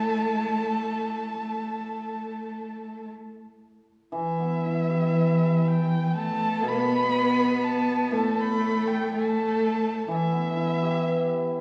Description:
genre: chinese traditional, Chinese chamber ensemble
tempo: 60 BPM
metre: 4/4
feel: rubato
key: unclear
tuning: A4 = 441 Hz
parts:
  - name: dark erhu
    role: melody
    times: 0.0-11.6 s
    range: E5 to B5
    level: -33 LUFS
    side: equal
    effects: none
  - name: clear cello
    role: second line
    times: 0.0-11.5 s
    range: E3 to B3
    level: -28 LUFS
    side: equal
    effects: none
  - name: hammered dulcimer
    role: accompaniment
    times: 0.0-11.6 s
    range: A2 to B4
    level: -32 LUFS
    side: equal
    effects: none
room: wet recital hall reverb, RT60 1.7 s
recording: heard from further back in the room, small room ambience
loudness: -25 LUFS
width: mono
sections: 0.0-4.1 A section; 4.1-11.6 B section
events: none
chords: none

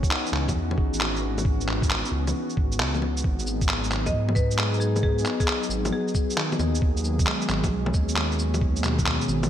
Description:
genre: future garage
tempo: 134 BPM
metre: 4/4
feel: swing 67% on 16ths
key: unclear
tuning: A4 = 442 Hz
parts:
  - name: bright tine electric piano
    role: accompaniment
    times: 0.0-9.5 s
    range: B2 to B4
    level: -32 LUFS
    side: left 2 dB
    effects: vintage 12-bit sampler grit, sidechain pumping, digital delay
  - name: warbly tape-like pad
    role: sustained chords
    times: 0.0-9.5 s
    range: E3 to G#4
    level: -30 LUFS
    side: left 1 dB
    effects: chorus, built-in reverb, vintage 12-bit sampler grit, sidechain pumping
  - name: dark detuned saw bass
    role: bass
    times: 0.0-9.5 s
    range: G#1 to G#2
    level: -27 LUFS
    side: equal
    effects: tube saturation
  - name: electronic kick drum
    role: drums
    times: 0.0-9.0 s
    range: none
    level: -25 LUFS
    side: equal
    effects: none
  - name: electronic shaker, handclaps, bongos and cabasa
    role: drums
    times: 0.0-9.5 s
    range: none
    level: -28 LUFS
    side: equal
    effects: gated reverb
  - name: marimba with medium hard mallets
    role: melody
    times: 4.1-6.3 s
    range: G#4 to D#5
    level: -33 LUFS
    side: left 2 dB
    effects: digital delay
room: light reverb, digital ambience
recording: bright 1980s-style digital production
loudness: -22 LUFS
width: side -10 dB against mid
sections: 0.0-9.5 A section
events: none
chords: 0.0 C#m7; 3.2 G#m7

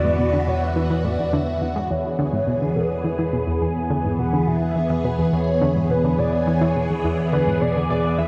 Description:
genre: ambient, sequencer-driven space music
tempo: 105 BPM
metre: 4/4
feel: straight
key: unclear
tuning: A4 = 440 Hz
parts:
  - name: pulse-width lead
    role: melody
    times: 0.0-8.3 s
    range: B4 to G#5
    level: -27 LUFS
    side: equal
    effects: chorus, delay
  - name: phased string machine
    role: sustained chords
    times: 0.0-8.3 s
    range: E3 to G#4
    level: -27 LUFS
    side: equal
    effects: ensemble chorus, phaser
  - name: analog pluck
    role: riff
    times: 0.0-8.3 s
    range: E2 to G#3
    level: -26 LUFS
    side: equal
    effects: chorus, delay
  - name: analog drone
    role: bass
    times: 0.0-8.3 s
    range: E2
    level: -28 LUFS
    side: equal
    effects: chorus
room: wet cathedral reverb, RT60 6.5 s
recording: in a vast, echoing space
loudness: -21 LUFS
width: mono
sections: 0.0-1.9 A section; 1.9-8.3 B section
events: filter sweep on synth arpeggio sound 0.0-1.9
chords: 0.0 Esus2; 1.9 E

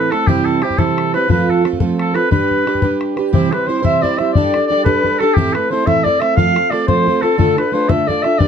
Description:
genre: celtic folk, Celtic jig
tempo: 118 BPM (dotted quarters)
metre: 6/8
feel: straight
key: G mixolydian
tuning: A4 = 442 Hz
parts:
  - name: warm oboe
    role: melody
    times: 0.0-8.5 s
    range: G4 to F5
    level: -17 LUFS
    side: left 1 dB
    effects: plate reverb
  - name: fingerpicked plugged-in twelve-string acoustic guitar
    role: accompaniment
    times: 0.0-8.5 s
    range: A2 to C5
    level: -17 LUFS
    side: right 4 dB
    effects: none
  - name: bodhran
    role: percussion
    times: 0.1-8.5 s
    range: none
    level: -18 LUFS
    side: left 4 dB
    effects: none
  - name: bright reedy baroque flute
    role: second line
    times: 3.3-8.5 s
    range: G4 to F5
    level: -21 LUFS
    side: left 4 dB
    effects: none
room: moderate studio reverb, RT60 0.6 s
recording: close, detailed microphones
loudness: -13 LUFS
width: side -7 dB against mid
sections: 0.0-3.3 A section; 3.3-8.5 B section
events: none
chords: 0.3 C; 1.3 F; 2.3 G; 3.3 C; 4.3 Gsus2; 5.4 Am; 6.4 F; 7.4 Dm

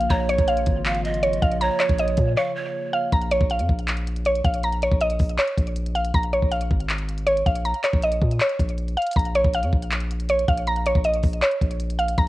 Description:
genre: hip hop, trap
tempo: 159 BPM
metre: 4/4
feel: half-time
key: Bb minor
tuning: A4 = 440 Hz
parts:
  - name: mallet-like synth pluck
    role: melody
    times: 0.0-12.3 s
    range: Db5 to Bb5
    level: -23 LUFS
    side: equal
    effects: chorus, low-pass filter, tape echo
  - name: warbly tape-like pad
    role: sustained chords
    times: 0.0-3.1 s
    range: Db3 to F4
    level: -33 LUFS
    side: left 2 dB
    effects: chorus, built-in reverb, cassette tape
  - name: long sustained 808-style bass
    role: bass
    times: 0.0-12.3 s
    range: Ab1 to Bb2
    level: -26 LUFS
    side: equal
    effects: none
  - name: trap drum kit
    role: drums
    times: 0.0-12.3 s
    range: handclaps, hi-hat, kick drum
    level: -23 LUFS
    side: equal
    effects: cassette tape
  - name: breathy mellow large pan pipes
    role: second line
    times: 0.1-3.1 s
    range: Db5 to F5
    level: -26 LUFS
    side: right 4 dB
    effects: cassette tape, tape echo
room: little or no reverb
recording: home recording on cassette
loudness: -20 LUFS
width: side -17 dB against mid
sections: 0.0-3.1 A section; 3.1-12.3 B section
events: break 2.4-3.1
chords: 0.0 Bbm

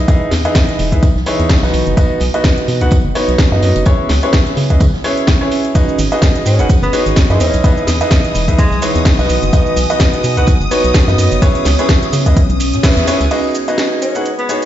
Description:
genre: piano house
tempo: 127 BPM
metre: 4/4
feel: swing 56% on 16ths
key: G# minor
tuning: A4 = 440 Hz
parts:
  - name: clear upright piano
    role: riff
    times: 0.0-14.7 s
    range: B3 to F#5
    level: -17 LUFS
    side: equal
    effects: vintage 12-bit sampler grit, sidechain pumping, low-pass filter, digital delay
  - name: organ-like FM bass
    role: bass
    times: 0.0-13.3 s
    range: E1 to C#3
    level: -15 LUFS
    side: equal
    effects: sidechain pumping
  - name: deep dark ambient pad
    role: texture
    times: 0.0-14.7 s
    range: E3 to B5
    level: -23 LUFS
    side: equal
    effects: chorus, built-in reverb, sidechain pumping
  - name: electronic kick drum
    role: drums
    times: 0.1-12.9 s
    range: none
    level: -12 LUFS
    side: equal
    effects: overdrive
  - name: house drum kit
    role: drums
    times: 0.1-14.7 s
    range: crash cymbal, hi-hat, shaker, snare drum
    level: -21 LUFS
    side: equal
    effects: none
  - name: open jazz drum kit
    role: drums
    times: 0.1-13.3 s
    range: hi-hat, snare drum, tambourine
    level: -30 LUFS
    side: right 2 dB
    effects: sidechain pumping on hats, high-pass filter on hats, high-pass filter on snare, sidechain pumping on perc, high-pass filter on perc, high-pass filter on room
  - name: string machine, violins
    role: sustained chords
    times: 5.8-14.7 s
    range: D#6 to G#6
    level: -26 LUFS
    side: equal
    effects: ensemble chorus, sidechain pumping
  - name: breathy tenor saxophone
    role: melody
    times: 6.5-9.0, 14.0-14.6 s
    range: G#3 to C#4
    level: -21 LUFS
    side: equal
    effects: digital delay
room: light reverb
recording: played on a big sound system in a bare room, stone room reverb, nothing above 7.6 kHz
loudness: -10 LUFS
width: side -12 dB against mid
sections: 0.0-13.3 A section; 13.3-14.7 B section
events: band accent 12.8; filter sweep on string machine 13.3-14.7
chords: 0.0 Emaj7; 1.7 B; 3.9 C#m7; 5.8 G#m7; 7.4 Emaj7; 9.3 B; 11.4 C#m7; 13.3 G#m7

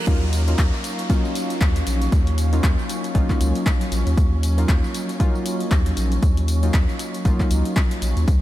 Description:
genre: deep house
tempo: 117 BPM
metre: 4/4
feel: swing 58% on 16ths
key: Eb minor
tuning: A4 = 440 Hz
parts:
  - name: warbly tape-like pad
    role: sustained chords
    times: 0.0-8.4 s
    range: Gb3 to D6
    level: -32 LUFS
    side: equal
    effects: chorus, built-in reverb, sidechain pumping
  - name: warm analog keys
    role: stabs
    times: 0.0-8.3 s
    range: Gb3 to F4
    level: -28 LUFS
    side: left 1 dB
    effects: chorus, sidechain pumping, diffuse ambient delay
  - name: reverse cymbal and downlifter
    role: sound effects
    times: 0.0-4.2 s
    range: none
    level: -35 LUFS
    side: right 1 dB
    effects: none
  - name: warm studio string section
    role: texture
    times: 0.0-8.4 s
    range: Gb3 to Bb5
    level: -34 LUFS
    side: right 1 dB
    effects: sidechain pumping
  - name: round analog bass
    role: bass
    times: 0.1-8.4 s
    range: Bb1 to Eb2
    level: -20 LUFS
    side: equal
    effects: sidechain pumping
  - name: electronic kick drum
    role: drums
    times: 0.1-8.4 s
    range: none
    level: -19 LUFS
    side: equal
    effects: overdrive
  - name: punchy analog drum machine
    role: drums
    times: 0.1-8.4 s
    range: handclaps, hi-hat, tambourine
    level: -30 LUFS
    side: left 1 dB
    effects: overdrive
room: little or no reverb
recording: none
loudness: -18 LUFS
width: side -15 dB against mid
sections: 0.1-8.4 A section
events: drop 0.1-8.4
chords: 0.1 Ebm9

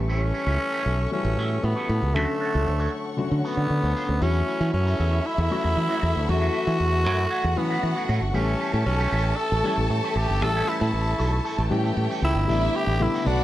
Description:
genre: disco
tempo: 116 BPM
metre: 4/4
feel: straight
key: unclear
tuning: A4 = 440 Hz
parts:
  - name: warm concert grand piano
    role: accompaniment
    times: 0.0-13.4 s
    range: D3 to G4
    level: -30 LUFS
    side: left 4 dB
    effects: none
  - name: dark studio string section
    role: sustained chords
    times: 0.0-13.4 s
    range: A4 to D6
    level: -36 LUFS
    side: left 3 dB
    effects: none
  - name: modern bright fingered electric bass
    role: bass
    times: 0.0-13.4 s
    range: G1 to E3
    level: -23 LUFS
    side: equal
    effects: none
  - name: growling tenor saxophone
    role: melody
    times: 0.1-13.4 s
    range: A3 to A4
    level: -27 LUFS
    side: equal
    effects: none
  - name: electric guitar with an envelope filter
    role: accompaniment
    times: 0.1-13.4 s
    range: A3 to E5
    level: -34 LUFS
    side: right 4 dB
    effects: phaser
  - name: warm studio violin section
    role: second line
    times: 4.2-13.4 s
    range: E4 to A5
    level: -30 LUFS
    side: right 1 dB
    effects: none
room: light reverb, small room ambience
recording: dark, warm production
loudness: -21 LUFS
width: side -14 dB against mid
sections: 0.0-4.2 A section; 4.2-12.5 B section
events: none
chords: 0.0 A7; 2.1 Dmaj7; 4.2 F#m7; 8.3 A7; 12.5 A9sus4

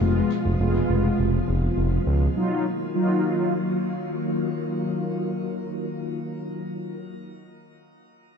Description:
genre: pop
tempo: 102 BPM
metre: 4/4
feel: straight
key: Eb minor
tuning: A4 = 440 Hz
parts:
  - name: mellow synth brass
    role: accompaniment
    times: 0.0-3.5 s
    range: Gb3 to F4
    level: -26 LUFS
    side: equal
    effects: chorus, low-pass filter, shimmer reverb
  - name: soft string machine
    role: sustained chords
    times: 0.0-7.0 s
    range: Cb3 to F4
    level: -27 LUFS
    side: left 1 dB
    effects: ensemble chorus, low-pass filter, shimmer reverb
  - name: smooth synth bass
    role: bass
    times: 0.0-2.3 s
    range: F1 to Db2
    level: -22 LUFS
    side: equal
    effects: none
room: moderate plate reverb, RT60 2.4 s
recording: echo-heavy mix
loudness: -22 LUFS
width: side -6 dB against mid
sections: 0.0-7.1 A section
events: filter sweep 0.0-7.1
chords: 0.0 Fdim; 2.4 Ebmadd9

